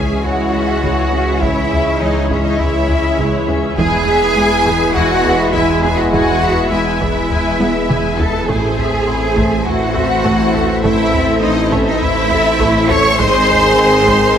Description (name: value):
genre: cinematic, hybrid orchestral and electronic film score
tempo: 102 BPM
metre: 4/4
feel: straight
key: C# harmonic minor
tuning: A4 = 440 Hz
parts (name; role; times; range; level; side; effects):
- rich symphonic violin section; melody; 0.0-14.4 s; C5 to G#5; -25 LUFS; left 5 dB; none
- warm symphonic violin section; second line; 0.0-14.4 s; C#5 to C#6; -21 LUFS; left 2 dB; none
- warm symphonic viola section; accompaniment; 0.0-14.4 s; G#3 to B#4; -22 LUFS; equal; none
- brassy analog pad; sustained chords; 0.0-14.4 s; E3 to C#5; -24 LUFS; left 1 dB; chorus
- clear trombone section; sustained chords; 0.0-14.4 s; D#3 to A3; -24 LUFS; right 2 dB; none
- dark French horn section; sustained chords; 0.0-14.4 s; B3 to G#4; -22 LUFS; left 4 dB; none
- tight sequenced synth; arpeggios; 0.0-14.3 s; C#3 to A4; -24 LUFS; right 2 dB; none
- rich studio double bass section; bass; 0.0-14.3 s; G#1 to E2; -23 LUFS; right 2 dB; none
- sub bass with octave; bass; 0.0-14.4 s; E1 to C#2; -24 LUFS; equal; none
- warm symphonic cello section; bass; 0.0-14.4 s; C#4 to C#5; -17 LUFS; right 2 dB; none
- impact; sound effects; 0.0-1.4 s; none; barely audible; none; none
- taiko ensemble; drums; 0.8-14.4 s; none; -23 LUFS; equal; none
room: moderate scoring stage reverb, RT60 1.8 s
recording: none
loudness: -12 LUFS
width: side -8 dB against mid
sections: 0.0-14.4 A section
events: impact 0.0-1.4; drum fill 7.6-8.5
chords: 0.0 C#m; 3.8 E; 8.5 Am; 13.2 G#